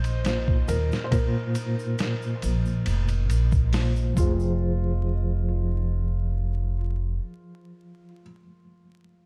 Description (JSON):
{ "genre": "trip hop", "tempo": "69 BPM", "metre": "4/4", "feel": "straight", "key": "F minor", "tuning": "A4 = 440 Hz", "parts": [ { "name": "felt-muted upright piano", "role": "melody", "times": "0.0-8.2 s", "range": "F4 to C5", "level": "-38 LUFS", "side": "equal", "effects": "tape echo" }, { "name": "mellow reed electric piano", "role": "accompaniment", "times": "0.0-9.3 s", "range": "Bb2 to C5", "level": "-32 LUFS", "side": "equal", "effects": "fast tremolo" }, { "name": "upright bass", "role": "bass", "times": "0.0-7.2 s", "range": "F1 to Eb2", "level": "-26 LUFS", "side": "equal", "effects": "tube saturation" }, { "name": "dusty soul sampler-style drum kit", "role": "drums", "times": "0.0-4.4 s", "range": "hi-hat, kick drum, ride cymbal, snare drum", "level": "-30 LUFS", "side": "equal", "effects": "studio reverb" }, { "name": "backwards swelling texture", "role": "texture", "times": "0.0-4.6 s", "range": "Eb4 to Eb5", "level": "-51 LUFS", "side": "equal", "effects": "built-in reverb" }, { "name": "tube shaker", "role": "percussion", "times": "0.1-4.6 s", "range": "none", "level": "-50 LUFS", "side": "equal", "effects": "none" } ], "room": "small room ambience", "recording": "dark, warm production, vinyl crackle", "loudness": "-25 LUFS", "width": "mono", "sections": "0.0-4.6 A section; 4.6-8.1 B section", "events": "none", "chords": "0.0 Bbsus2; 4.2 Fm", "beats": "0.26 | 1.13 2.00 2.87 3.74 | 4.61 5.48 6.35 7.22" }